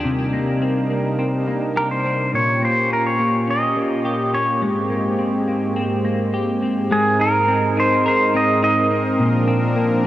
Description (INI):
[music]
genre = dream pop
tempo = 105 BPM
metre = 4/4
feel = straight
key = unclear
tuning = A4 = 440 Hz
[part]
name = warm analog pad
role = sustained chords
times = 0.0-10.1 s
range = Ab2 to Bb4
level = -21 LUFS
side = right 1 dB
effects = chorus
[part]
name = semi-hollow electric guitar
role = arpeggios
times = 0.0-10.1 s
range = Bb2 to Bb4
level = -22 LUFS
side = left 2 dB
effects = analog chorus, digital delay
[part]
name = pedal steel guitar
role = melody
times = 1.8-9.0 s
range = Ab4 to Eb5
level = -20 LUFS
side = right 1 dB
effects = digital delay
[sound]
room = wet huge ambient reverb, RT60 5.0 s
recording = worn, warbling old tape, cassette tape, warbly pitch drift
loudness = -16 LUFS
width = side -14 dB against mid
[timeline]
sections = 0.0-6.9 A section; 6.9-10.1 B section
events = none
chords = 0.0 Cm7; 2.3 Eb7/Bb; 4.6 Abmaj9; 6.9 Abadd9; 9.2 Bbadd9